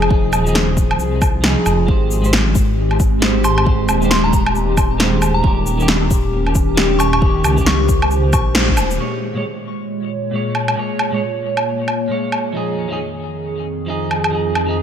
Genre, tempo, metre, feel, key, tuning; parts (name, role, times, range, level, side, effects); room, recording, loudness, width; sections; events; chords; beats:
future garage; 135 BPM; 4/4; swing 61% on 16ths; Bb dorian; A4 = 440 Hz
clean electric guitar; accompaniment; 0.0-14.8 s; Bb2 to Db5; -24 LUFS; right 2 dB; analog chorus, sidechain pumping, low-pass filter, ping-pong delay
warbly tape-like pad; sustained chords; 0.0-14.8 s; F2 to Db5; -21 LUFS; equal; chorus, built-in reverb, phaser, sidechain pumping
dark detuned saw bass; bass; 0.0-9.0 s; Eb1 to Db2; -18 LUFS; equal; tube saturation, sidechain pumping
electronic woodblock, shaker and snare drum; drums; 0.0-14.7 s; -19 LUFS; equal; overdrive
electronic kick drum; drums; 0.1-8.8 s; -17 LUFS; equal; overdrive
soft synth bell; melody; 3.4-7.8 s; Bb5 to Db6; -24 LUFS; equal; chorus, ping-pong delay
moderate plate reverb, RT60 2.5 s; dreamy mix soaked in reverb; -14 LUFS; side -9 dB against mid
0.0-9.0 A section; 9.0-14.8 B section
band accent 8.6
0.0 Fm7; 1.9 Abmaj7; 5.4 Eb7; 9.0 Bbm7; 12.6 Fm7
| 0.11 0.55 0.99 1.44 | 1.88 2.33 2.77 3.22 | 3.66 4.11 4.55 5.00 | 5.44 5.88 6.33 6.77 | 7.22 7.66 8.11 8.55 | 8.99 9.44 9.88 10.33 | 10.77 11.22 11.66 12.11 | 12.55 12.99 13.44 13.88 | 14.33 14.77